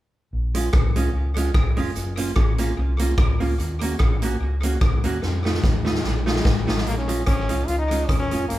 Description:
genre	ska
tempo	147 BPM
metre	4/4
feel	swing 56% on 8ths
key	Bb minor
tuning	A4 = 439 Hz
part	fingered electric bass	bass	0.3-8.6 s	F1 to F2	-24 LUFS	equal	none
part	hollow-body jazz guitar	accompaniment	0.5-8.5 s	Ab3 to Gb4	-27 LUFS	right 3 dB	tape echo
part	swinging big-band drum kit	drums	0.5-8.6 s	hi-hat, kick drum, rim click, snare drum	-22 LUFS	equal	tape echo
part	brilliant trombone	melody	6.9-8.6 s	Bb3 to F4	-25 LUFS	left 1 dB	none
room	moderate large studio reverb, RT60 1.1 s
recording	band playing live in one room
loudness	-19 LUFS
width	side -15 dB against mid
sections	0.3-6.9 A section; 6.9-8.6 B section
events	drum fill 5.2-6.9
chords	0.3 Bbm7; 2.0 Gbmaj7; 3.6 Ebm7; 5.2 F7; 6.9 Bbm7

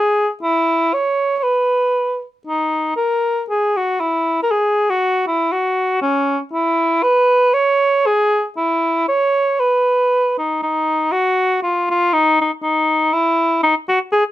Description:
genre	alpine folk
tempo	118 BPM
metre	2/4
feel	swing 53% on 8ths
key	B major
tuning	A4 = 441 Hz
part	mellow cor anglais	solo	0.0-14.2 s	C#4 to C#5	-15 LUFS	equal	none
room	light reverb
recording	none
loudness	-15 LUFS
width	side -14 dB against mid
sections	0.0-2.5 A section; 2.5-10.6 A section; 10.6-14.3 B section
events	none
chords	none

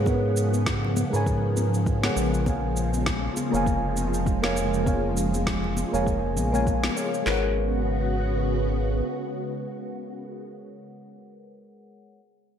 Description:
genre	sunset chillout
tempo	100 BPM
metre	4/4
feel	swing 57% on 16ths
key	G# dorian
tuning	A4 = 440 Hz
part	mellow FM electric piano	accompaniment	0.0-12.2 s	G#3 to G#5	-29 LUFS	moving between left 2 dB and right 4 dB	chorus, phaser, auto-pan, cassette tape, tape echo, slapback echo
part	soft string machine	sustained chords	0.0-10.4 s	C#3 to F#4	-29 LUFS	equal	phaser, ensemble chorus
part	round analog bass	bass	0.0-9.0 s	E#1 to G#2	-27 LUFS	equal	none
part	electronic shaker and snare drum	drums	0.1-7.2 s	none	-32 LUFS	equal	none
part	smooth R&B drum kit	drums	0.1-7.4 s	handclaps, kick drum, snare drum	-29 LUFS	equal	none
part	congas	percussion	0.1-6.9 s	none	-34 LUFS	left 5 dB	none
room	moderate lush hall reverb, RT60 2.6 s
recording	big arena sound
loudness	-22 LUFS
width	side -8 dB against mid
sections	0.0-7.3 A section; 7.3-9.7 B section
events	none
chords	0.0 G#m11; 2.5 A#m7; 7.3 G#m11

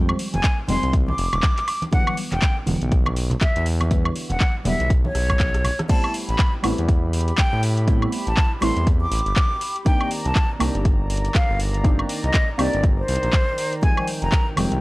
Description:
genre	deep house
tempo	121 BPM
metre	4/4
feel	swing 59% on 16ths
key	unclear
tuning	A4 = 440 Hz
part	deep mellow chord stab	stabs	0.0-14.8 s	D3 to G4	-28 LUFS	equal	chorus, phaser, sidechain pumping
part	smooth synth bass	bass	0.0-14.8 s	Eb1 to A2	-23 LUFS	equal	tube saturation, sidechain pumping
part	deep house drum kit	drums	0.1-14.8 s	crash cymbal, handclaps, hi-hat, rim click, woodblock	-27 LUFS	equal	overdrive
part	breathy silver concert flute	melody	0.3-14.5 s	C5 to D6	-26 LUFS	equal	tape echo
part	congas	percussion	0.3-5.9 s	none	-28 LUFS	right 1 dB	sidechain pumping on perc
part	electronic kick drum	drums	0.4-14.4 s	none	-19 LUFS	equal	overdrive
part	warm analog pad	sustained chords	5.9-14.8 s	Eb3 to B5	-33 LUFS	right 1 dB	chorus, sidechain pumping
room	little or no reverb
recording	dry, gritty hardware recording, cassette tape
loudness	-18 LUFS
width	side -20 dB against mid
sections	0.0-5.9 A section; 5.9-14.8 B section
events	drum fill 5.1-5.9; drop 5.9-14.8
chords	0.0 Fm9; 1.9 Em9; 5.9 Am9; 9.9 Cm9; 13.8 Fm9

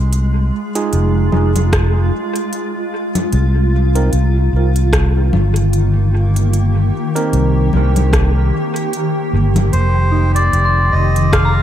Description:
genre	ambient dub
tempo	75 BPM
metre	4/4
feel	swing 57% on 16ths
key	F minor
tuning	A4 = 440 Hz
part	granular cloud pad	sustained chords	0.0-11.6 s	Eb3 to G4	-20 LUFS	equal	built-in reverb
part	fingered electric bass	bass	0.0-11.6 s	F1 to C2	-13 LUFS	equal	tube saturation
part	organic electronic drum kit	drums	0.1-11.5 s	congas, hi-hat, rim click	-22 LUFS	left 1 dB	overdrive, dub echo
part	overdriven tine electric piano	stabs	0.8-7.7 s	C4 to Bb4	-24 LUFS	right 4 dB	dub echo
part	electronic kick drum	drums	1.7-11.5 s	none	-18 LUFS	equal	none
part	melodica	melody	9.7-11.6 s	C5 to F5	-17 LUFS	equal	dub echo
part	soft synth bell	arpeggios	10.1-11.6 s	Eb4 to C6	-23 LUFS	equal	chorus, dub echo
room	light reverb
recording	none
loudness	-12 LUFS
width	side -11 dB against mid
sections	0.0-11.6 A section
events	none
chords	0.0 Fm7; 3.3 Cm7; 9.7 Fm7

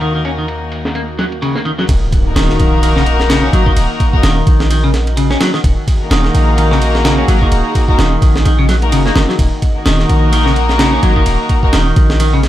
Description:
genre	breakbeat, breaks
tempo	128 BPM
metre	4/4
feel	swing 57% on 16ths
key	Eb minor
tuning	A4 = 440 Hz
part	phased analog pad	sustained chords	0.0-12.5 s	Eb2 to Bb4	-23 LUFS	equal	phaser, chorus, sidechain pumping
part	clean electric guitar	riff	0.0-12.4 s	Db3 to Db4	-17 LUFS	equal	tube saturation, tape echo
part	warm chamber string section	stabs	0.0-11.7 s	Bb3 to Bb4	-18 LUFS	left 2 dB	tape echo
part	breakbeat sampler-style drum kit	drums	0.0-12.5 s	kick drum, ride cymbal, snare drum	-16 LUFS	equal	low-pass filter on cymbals, studio ambience, low-pass filter on snare, low-pass filter on kick
part	warm 808-style bass	bass	1.9-12.5 s	Eb1 to Bb1	-13 LUFS	equal	none
part	impact	sound effects	1.9-3.8 s	none	-21 LUFS	equal	none
room	little or no reverb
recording	none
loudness	-10 LUFS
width	side -13 dB against mid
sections	0.0-1.9 A section; 1.9-12.5 B section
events	filter sweep on string section 0.0-1.9; drop 1.9-12.5; impact 1.9-3.8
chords	0.0 Ebm

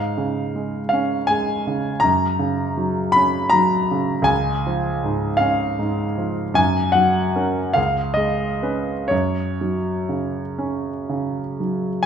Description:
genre	classical, romantic nocturne for solo piano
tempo	39-55 BPM (dotted quarters)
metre	6/8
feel	rubato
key	F# major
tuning	A4 = 440 Hz
part	clear concert grand piano	solo	0.0-12.1 s	C#2 to B5	-18 LUFS	equal	none
room	moderate recital hall reverb, RT60 1.6 s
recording	minimal, uncompressed stereo recording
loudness	-18 LUFS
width	side -8 dB against mid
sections	0.0-12.1 A section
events	none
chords	0.0 C#/G#; 2.0 F#; 4.3 C#; 6.6 F#; 7.8 C#5; 9.1 F#5

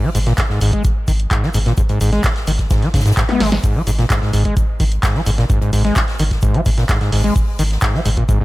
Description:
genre	acid house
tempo	129 BPM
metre	4/4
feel	straight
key	unclear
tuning	A4 = 440 Hz
part	overdriven acid bass	riff	0.0-8.4 s	G#2 to B3	-18 LUFS	equal	distortion, analog chorus, cassette tape, sidechain pumping
part	warm sub bass	bass	0.1-8.2 s	G#1 to G#2	-19 LUFS	equal	sidechain pumping
part	punchy analog drum machine	drums	0.1-8.4 s	handclaps, hi-hat, snare drum, toms	-23 LUFS	equal	small room ambience
part	swinging big-band drum kit	drums	0.2-8.4 s	hi-hat, shaker, snare drum	-32 LUFS	left 2 dB	high-pass filter on hats, small room ambience, high-pass filter on snare, high-pass filter on perc, high-pass filter on room
part	electronic kick drum	drums	0.4-8.4 s	none	-18 LUFS	equal	overdrive, small room ambience
room	small room ambience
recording	none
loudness	-14 LUFS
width	side -18 dB against mid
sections	0.0-8.4 A section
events	drum fill 3.3-3.6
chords	none

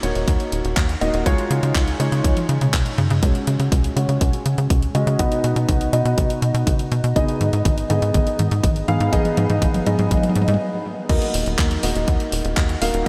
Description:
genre	italo disco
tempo	122 BPM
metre	4/4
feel	straight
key	Eb minor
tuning	A4 = 439 Hz
part	dark grand piano	stabs	0.0-13.1 s	Ab3 to F5	-25 LUFS	equal	analog chorus, low-pass filter, tape echo
part	tight sequencer bass	bass	0.0-13.1 s	Eb1 to Db3	-24 LUFS	equal	none
part	house drum kit	drums	0.0-13.1 s	crash cymbal, handclaps, hi-hat, toms	-28 LUFS	equal	none
part	electronic kick drum	drums	0.3-13.1 s	none	-23 LUFS	equal	none
room	moderate huge ambient reverb, RT60 7.6 s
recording	dreamy mix soaked in reverb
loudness	-20 LUFS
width	mono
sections	0.0-3.2 A section; 3.2-11.1 B section; 11.1-13.1 C section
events	drum fill 2.2-3.2, 3.2-10.6; filter sweep on grand piano 3.2-11.1; stop 10.6-11.1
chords	0.0 Ebm7; 1.3 Dbadd9; 3.2 Dbsus4; 5.2 B; 7.2 Abm; 11.1 Ebm

